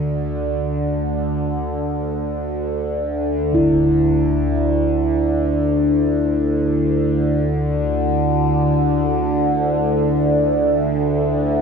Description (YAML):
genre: dark ambient drone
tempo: free time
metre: none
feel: none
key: unclear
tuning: A4 = 440 Hz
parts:
  - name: overtone-sweeping drone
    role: drone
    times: 0.0-11.6 s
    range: D2 to D3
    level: -17 LUFS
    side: equal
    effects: chorus, built-in reverb, phaser
  - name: impact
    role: percussion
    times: 3.5-3.7 s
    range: none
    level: -34 LUFS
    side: equal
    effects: low-pass filter on sfx
  - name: bronze singing bowl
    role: texture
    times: 3.5-11.6 s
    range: E4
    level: -22 LUFS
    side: right 2 dB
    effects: none
room: wet lush hall reverb, RT60 2.7 s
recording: dreamy mix soaked in reverb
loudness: -16 LUFS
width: side -6 dB against mid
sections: 0.0-3.5 A section; 3.5-11.6 B section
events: fade-in on impacts and reversed cymbals 3.5-11.6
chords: 0.0 N.C.; 3.5 D5